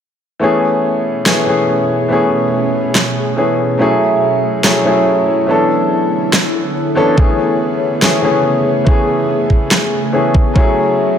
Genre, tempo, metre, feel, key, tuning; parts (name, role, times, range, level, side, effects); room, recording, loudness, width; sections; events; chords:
future bass; 142 BPM; 4/4; swing 55% on 16ths, half-time; A major; A4 = 440 Hz
warm grand piano; accompaniment; 0.4-11.2 s; E3 to A4; -13 LUFS; left 1 dB; sidechain pumping, digital delay
ethereal airy pad; sustained chords; 1.1-11.2 s; B2 to C#5; -20 LUFS; equal; ensemble chorus, built-in reverb, sidechain pumping
electronic snare drum and handclaps; drums; 1.3-9.8 s; -15 LUFS; equal
electronic kick drum; drums; 7.2-10.6 s; -11 LUFS; equal
moderate lush hall reverb, RT60 1.7 s; -11 LUFS; side -8 dB against mid
0.4-11.2 A section
0.4 Amaj9; 3.8 F#m9; 5.5 Bm11; 7.2 Amaj9; 10.6 F#m9